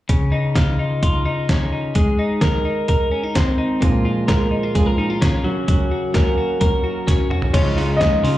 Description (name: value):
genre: jangly indie pop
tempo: 129 BPM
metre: 4/4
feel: straight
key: Db major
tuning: A4 = 440 Hz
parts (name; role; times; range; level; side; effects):
- twelve-string electric guitar; arpeggios; 0.1-8.4 s; Bb2 to Bb4; -20 LUFS; left 2 dB; spring reverb, slapback echo
- trip hop sampler-style drum kit; drums; 0.1-8.4 s; crash cymbal, hi-hat, kick drum, snare drum, toms; -18 LUFS; equal; none
- fingerpicked steel-string acoustic guitar; accompaniment; 3.8-8.4 s; Gb2 to Gb4; -23 LUFS; right 4 dB; slapback echo
- warm upright piano; melody; 7.5-8.4 s; Db5 to Eb5; -20 LUFS; left 2 dB; slapback echo
- vintage muted picked electric bass; bass; 7.5-8.4 s; Db2 to Db3; -22 LUFS; equal; none
room: little or no reverb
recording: live gig heard through the venue's PA, club reverb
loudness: -16 LUFS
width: side -14 dB against mid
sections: 0.1-7.5 A section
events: drum fill 7.1-7.5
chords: 0.1 Dbadd9; 2.0 Abadd9; 3.8 Bbm7; 5.4 Gb; 7.5 Dbadd9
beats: | 0.09 0.56 1.02 1.49 | 1.96 2.42 2.89 3.35 | 3.82 4.28 4.75 5.21 | 5.68 6.15 6.61 7.08 | 7.54 8.01